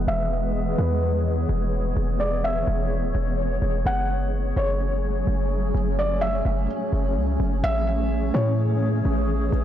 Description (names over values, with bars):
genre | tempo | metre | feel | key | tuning
hip hop | 127 BPM | 4/4 | half-time | F# minor | A4 = 441 Hz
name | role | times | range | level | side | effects
granular cloud pad | sustained chords | 0.0-9.6 s | E3 to C#5 | -26 LUFS | equal | built-in reverb, low-pass filter
warm 808-style bass | bass | 0.0-9.6 s | D1 to A2 | -24 LUFS | equal | transformer saturation
felt-muted upright piano | melody | 0.1-9.5 s | B4 to F#5 | -29 LUFS | equal | low-pass filter, digital delay
room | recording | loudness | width
little or no reverb | blown-out, overdriven recording, overdrive | -21 LUFS | side -11 dB against mid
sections
0.0-9.6 A section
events
filter sweep 0.0-9.6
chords
0.0 E; 3.9 F#madd9; 7.6 Amaj7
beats
| 0.08 0.55 1.02 1.49 | 1.97 2.44 2.91 3.38 | 3.86 4.33 4.80 5.27 | 5.75 6.22 6.69 7.16 | 7.64 8.11 8.58 9.05 | 9.53